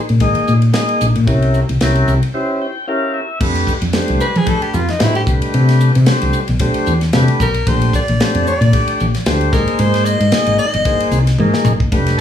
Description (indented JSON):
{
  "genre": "electric jazz fusion",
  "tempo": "113 BPM",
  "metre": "4/4",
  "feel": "swing 56% on 16ths",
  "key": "unclear",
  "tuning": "A4 = 435 Hz",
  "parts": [
    { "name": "woody fretless electric bass", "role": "bass", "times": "0.1-12.1 s", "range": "F1 to F3", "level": "-14 LUFS", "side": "equal", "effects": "none" },
    { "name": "tight funk drum kit", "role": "drums", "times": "0.1-12.2 s", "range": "crash cymbal, hi-hat, kick drum, ride cymbal, snare drum, toms", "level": "-20 LUFS", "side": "equal", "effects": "none" },
    { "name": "tonewheel organ", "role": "accompaniment", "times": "0.2-12.2 s", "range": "A3 to G5", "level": "-18 LUFS", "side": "left 1 dB", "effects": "slow rotary speaker" },
    { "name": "bright soprano saxophone", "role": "melody", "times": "4.2-12.2 s", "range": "Eb4 to Eb5", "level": "-21 LUFS", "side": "left 1 dB", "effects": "tape echo" }
  ],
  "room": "light reverb",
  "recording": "studio reverb",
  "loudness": "-12 LUFS",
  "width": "side -9 dB against mid",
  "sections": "0.0-3.4 A section; 3.4-12.2 B section",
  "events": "break 2.3-3.4; tonewheel organ fill 2.3-3.4; soprano saxophone solo 3.4-12.2; drum fill 11.4-11.9",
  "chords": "0.0 Bb7sus4; 1.3 C7b9; 3.4 Fadd9; 5.3 Cmaj7sus2; 7.7 Bbmaj9; 9.5 Abadd9"
}